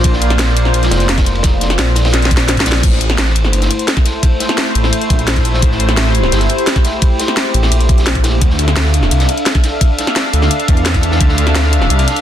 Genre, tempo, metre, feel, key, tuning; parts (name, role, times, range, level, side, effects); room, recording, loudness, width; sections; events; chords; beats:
dark technical drum and bass; 172 BPM; 4/4; straight; A phrygian; A4 = 440 Hz
sweeping resonant pad; sustained chords; 0.0-12.2 s; A3 to F5; -18 LUFS; equal; chorus, sidechain pumping
wide detuned saw bass; bass; 0.0-12.1 s; F1 to E2; -14 LUFS; equal; chorus, tube saturation
drum and bass drum kit; drums; 0.0-12.2 s; crash cymbal, hi-hat, snare drum; -17 LUFS; left 1 dB
electronic kick drum; drums; 0.0-11.3 s; -13 LUFS; equal
crunchy breakbeat drum kit; drums; 0.1-12.2 s; ride cymbal, snare drum; -24 LUFS; equal; high-pass filter on cymbals, high-pass filter on snare, high-pass filter on room
light reverb; dense, heavily limited modern master; -11 LUFS; side -11 dB against mid
0.0-2.8 A section; 2.8-12.2 A section
drop 0.0-2.8, 2.8-12.2; drum fill 2.1-2.8
0.0 Bb; 2.8 Am; 8.4 Dm7
| 0.04 0.39 0.74 1.09 | 1.44 1.79 2.14 2.48 | 2.83 3.18 3.53 3.88 | 4.23 4.58 4.93 5.28 | 5.62 5.97 6.32 6.67 | 7.02 7.37 7.72 8.07 | 8.41 8.76 9.11 9.46 | 9.81 10.16 10.51 10.86 | 11.21 11.55 11.90